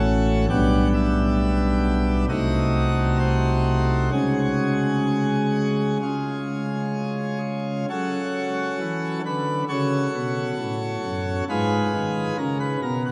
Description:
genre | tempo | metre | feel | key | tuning
classical, chorale-style piece for pipe organ | 66 BPM | 4/4 | uneven beats, rubato | F# minor | A4 = 442 Hz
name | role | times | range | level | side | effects
pipe organ, plenum | solo | 0.0-13.1 s | A1 to F#5 | -23 LUFS | equal | none
room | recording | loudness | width
wet cathedral reverb, RT60 5.7 s | dark, warm production, vinyl crackle | -23 LUFS | mono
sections
0.0-7.9 A section; 7.9-13.1 B section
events
none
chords
0.0 F#m/A; 0.5 G/B; 2.3 Cdim7; 4.1 C#sus4; 6.0 C#; 7.9 F#m; 11.5 Fdim/Ab

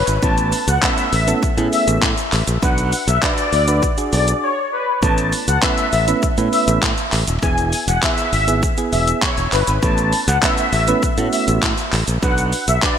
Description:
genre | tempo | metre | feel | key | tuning
dance-pop | 100 BPM | 4/4 | straight | A major | A4 = 441 Hz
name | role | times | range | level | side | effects
filtered supersaw swell | melody | 0.0-13.0 s | B4 to A5 | -20 LUFS | left 2 dB | lush chorus, sidechain pumping, ping-pong delay
modern bright fingered electric bass | bass | 0.0-12.8 s | D#1 to A2 | -19 LUFS | equal | sidechain pumping
pop drum kit | drums | 0.1-13.0 s | handclaps, hi-hat, kick drum, shaker | -20 LUFS | equal | gated reverb
soft electric-piano-like synth keys | accompaniment | 0.2-13.0 s | A3 to B4 | -23 LUFS | right 4 dB | chorus, sidechain pumping
room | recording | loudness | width
light reverb | bright 1980s-style digital production | -15 LUFS | side -8 dB against mid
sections
0.0-13.0 A section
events
break 4.4-5.0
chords
0.2 Aadd9; 2.6 Bm; 5.0 Aadd9; 7.4 E; 9.8 Aadd9; 12.2 Bm

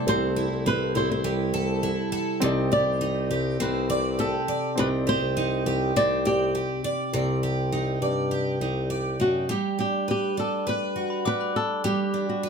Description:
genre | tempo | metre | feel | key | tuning
acoustic pop | 102 BPM | 4/4 | straight | unclear | A4 = 440 Hz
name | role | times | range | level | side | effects
flamenco guitar | melody | 0.0-12.5 s | F#4 to D5 | -27 LUFS | equal | none
clear baby grand piano | accompaniment | 0.0-7.2 s | A3 to D5 | -34 LUFS | equal | none
picked twelve-string acoustic guitar | accompaniment | 0.0-12.5 s | C3 to D5 | -27 LUFS | right 2 dB | none
dark bassoon | bass | 0.1-9.5 s | C2 to G2 | -28 LUFS | left 1 dB | none
glockenspiel with hard plastic mallets | second line | 11.1-12.2 s | G5 to F#6 | -32 LUFS | left 5 dB | none
room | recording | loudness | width
light reverb | close, detailed microphones | -23 LUFS | side -6 dB against mid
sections
0.0-7.1 A section; 7.1-9.5 B section; 9.5-12.5 C section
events
none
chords
0.0 Am7/C; 2.4 Cmadd9; 9.5 Gmaj7

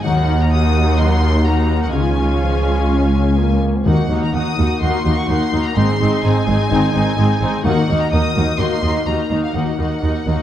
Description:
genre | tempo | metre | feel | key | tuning
cinematic | 126 BPM | 4/4 | straight | Eb dorian | A4 = 440 Hz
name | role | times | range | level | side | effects
clear symphonic violin section | melody | 0.0-10.4 s | F5 to Eb6 | -26 LUFS | left 3 dB | none
dark symphonic violin section | second line | 0.0-10.4 s | Gb4 to Gb5 | -24 LUFS | left 1 dB | none
warm symphonic viola section | accompaniment | 0.0-10.4 s | Bb3 to F4 | -22 LUFS | equal | none
clear French horn section | sustained chords | 0.0-9.7 s | F3 to Gb4 | -25 LUFS | left 3 dB | none
concert harp | arpeggios | 0.0-10.4 s | Ab2 to Bb4 | -24 LUFS | left 4 dB | none
rich symphonic double bass section | bass | 0.0-10.4 s | Ab1 to Eb2 | -19 LUFS | right 2 dB | none
warm symphonic cello section | bass | 0.0-10.4 s | Db2 to Ab2 | -21 LUFS | right 1 dB | none
timpani | percussion | 3.9-4.5 s | Eb3 | -24 LUFS | left 1 dB | none
room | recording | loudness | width
moderate scoring stage reverb, RT60 1.6 s | dark, warm production | -14 LUFS | side -11 dB against mid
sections
0.0-10.4 A section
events
none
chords
0.0 Ebm; 1.9 Db; 3.9 Ebm; 5.8 Ab; 7.6 Ebm

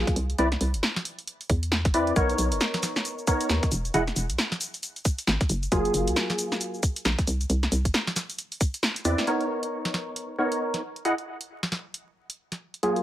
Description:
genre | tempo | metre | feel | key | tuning
UK garage, two-step garage | 135 BPM | 4/4 | swing 60% on 16ths | B major | A4 = 440 Hz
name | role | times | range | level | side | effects
percussive organ stab | stabs | 0.0-13.0 s | F#3 to F#5 | -26 LUFS | equal | ensemble chorus, dub echo
hollow knocking FM bass | bass | 0.0-9.2 s | E1 to E2 | -26 LUFS | equal | sidechain pumping
electronic kick drum | drums | 0.1-8.7 s | none | -24 LUFS | equal | none
punchy analog drum machine | drums | 0.1-13.0 s | cabasa, hi-hat, snare drum | -28 LUFS | equal | none
room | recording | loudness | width
light reverb | vinyl crackle | -24 LUFS | side -13 dB against mid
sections
0.0-9.3 A section; 9.3-13.0 B section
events
kick drops out 8.8-9.3; drum fill 8.8-9.3; band accent 9.2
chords
0.2 Cmaj9; 2.2 Bmaj9; 3.7 E; 5.5 F#maj9; 7.3 Cmaj9; 9.3 Bmaj9; 10.8 Emaj9

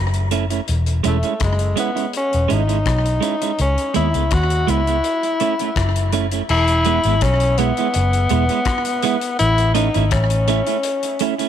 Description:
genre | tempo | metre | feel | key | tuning
roots reggae | 83 BPM | 4/4 | straight | E major | A4 = 439 Hz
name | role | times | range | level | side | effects
vintage muted fingered electric bass | bass | 0.0-10.6 s | E1 to D#2 | -18 LUFS | left 1 dB | none
cloth-damped thuddy drum kit | drums | 0.1-11.5 s | crash cymbal, hi-hat, kick drum, rim click | -26 LUFS | left 4 dB | slapback echo
clean electric guitar | accompaniment | 0.3-11.5 s | G#3 to E4 | -23 LUFS | right 12 dB | dub echo
breathy tenor saxophone | melody | 1.1-11.5 s | G#3 to F#4 | -20 LUFS | left 2 dB | dub echo
room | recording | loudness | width
light reverb, small room ambience | 1960s-style stereo | -16 LUFS | side -9 dB against mid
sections
0.0-6.5 A section; 6.5-11.5 B section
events
none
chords
0.0 F#m7; 0.7 E6; 3.6 C#m7; 5.0 F#m7; 6.5 E; 9.4 A

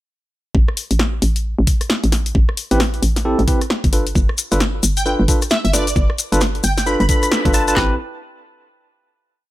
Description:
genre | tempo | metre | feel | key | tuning
UK garage, two-step garage | 133 BPM | 4/4 | swing 61% on 16ths | A minor | A4 = 440 Hz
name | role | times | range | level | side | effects
hollow knocking FM bass | bass | 0.5-8.0 s | G1 to A1 | -18 LUFS | equal | none
garage drum kit | drums | 0.5-7.9 s | handclaps, kick drum, snare drum | -17 LUFS | equal | none
punchy analog drum machine | drums | 0.7-7.7 s | hi-hat, rim click, snare drum | -22 LUFS | left 1 dB | overdrive
tine electric piano | stabs | 2.7-7.9 s | C4 to B4 | -21 LUFS | right 1 dB | medium tremolo, tape echo
maracas | percussion | 4.2-7.7 s | none | -24 LUFS | left 5 dB | none
plucky unison lead | melody | 5.0-7.7 s | D5 to B5 | -22 LUFS | right 1 dB | tape echo
room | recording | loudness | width
digital ambience | none | -15 LUFS | side -16 dB against mid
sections
0.5-7.8 groove; 7.8-9.5 final chord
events
band accent 7.3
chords
0.5 A7(no3); 3.9 G7; 7.8 Am7

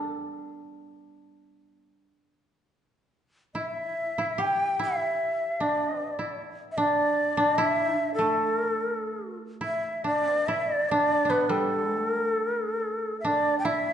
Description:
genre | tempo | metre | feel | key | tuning
japanese traditional, Japanese chamber music | 70-78 BPM | 2/4 | rubato | A suspended pentatonic | A4 = 442 Hz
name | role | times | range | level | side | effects
koto | second line | 0.0-13.9 s | A3 to G4 | -28 LUFS | right 1 dB | none
breathy shakuhachi | melody | 3.5-13.9 s | A4 to G5 | -26 LUFS | equal | none
room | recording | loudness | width
wet recital hall reverb, RT60 1.7 s | recorded in a church or concert hall, nothing above 10.4 kHz | -24 LUFS | side -9 dB against mid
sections
0.0-10.0 A section; 10.0-13.9 B section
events
none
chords
none

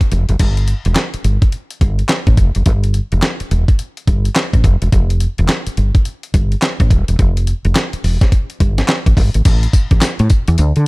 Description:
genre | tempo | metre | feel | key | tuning
R&B, new jack swing | 106 BPM | 4/4 | swing 62% on 16ths | unclear | A4 = 440 Hz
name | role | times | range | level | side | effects
dusty soul sampler-style drum kit | drums | 0.0-10.9 s | crash cymbal, handclaps, hi-hat, kick drum, snare drum, tambourine | -14 LUFS | equal | none
woody fretless electric bass | bass | 0.1-10.8 s | D#1 to D3 | -14 LUFS | equal | none
room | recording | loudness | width
little or no reverb | none | -12 LUFS | side -26 dB against mid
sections
0.4-9.5 A section; 9.5-10.9 B section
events
none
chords
none

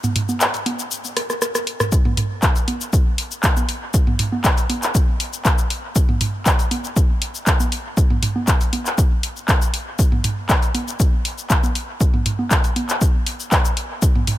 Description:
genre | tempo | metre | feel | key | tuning
techno | 119 BPM | 4/4 | straight | none | none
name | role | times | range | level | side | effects
deep house drum kit | drums | 0.0-14.4 s | handclaps, hi-hat, rim click, shaker | -22 LUFS | left 1 dB | dub echo
electronic toms and congas | percussion | 0.0-14.4 s | none | -25 LUFS | right 2 dB | sidechain pumping on toms, sidechain pumping on perc, dub echo
electronic kick drum | drums | 1.9-14.1 s | none | -17 LUFS | equal | none
room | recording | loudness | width
little or no reverb | none | -17 LUFS | side -14 dB against mid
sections
0.0-1.9 A section; 1.9-14.4 A section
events
break 0.0-1.9; drum fill 1.2-1.9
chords
none

